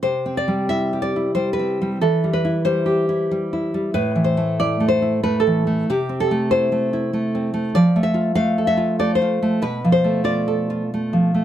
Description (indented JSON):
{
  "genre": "romantic piece for solo classical guitar",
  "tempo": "94 BPM",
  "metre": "3/4",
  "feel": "rubato",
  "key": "C major",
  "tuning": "A4 = 440 Hz",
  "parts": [
    { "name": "nylon-string guitar", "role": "solo", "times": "0.0-11.4 s", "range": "A2 to F5", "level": "-17 LUFS", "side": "equal", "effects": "none" }
  ],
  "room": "light reverb",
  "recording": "none",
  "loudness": "-17 LUFS",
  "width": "side -11 dB against mid",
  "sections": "0.0-11.4 A section",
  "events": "none",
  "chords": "0.0 C; 2.0 C/E; 3.9 A5; 5.9 Am/C; 7.7 F; 9.6 Bm7b5",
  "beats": "| 0.04 0.70 1.38 | 2.02 2.66 3.30 | 3.95 4.58 5.22 | 5.87 6.51 7.13 | 7.75 8.37 9.01 | 9.64 10.27 10.92"
}